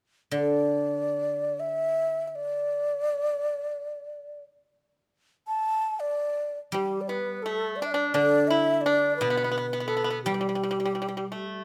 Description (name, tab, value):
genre	chinese traditional, Chinese chamber ensemble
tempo	free time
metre	none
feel	none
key	D zhi mode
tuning	A4 = 438 Hz
part	breathy xiao	melody	0.3-11.6 s	G4 to A5	-29 LUFS	equal	none
part	guzheng	accompaniment	0.3-11.6 s	B2 to G3	-33 LUFS	equal	none
part	pipa	second line	6.7-11.6 s	G3 to E4	-31 LUFS	equal	none
room	light reverb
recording	close, detailed microphones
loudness	-27 LUFS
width	mono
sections	0.0-6.7 A section; 6.7-11.6 B section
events	none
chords	none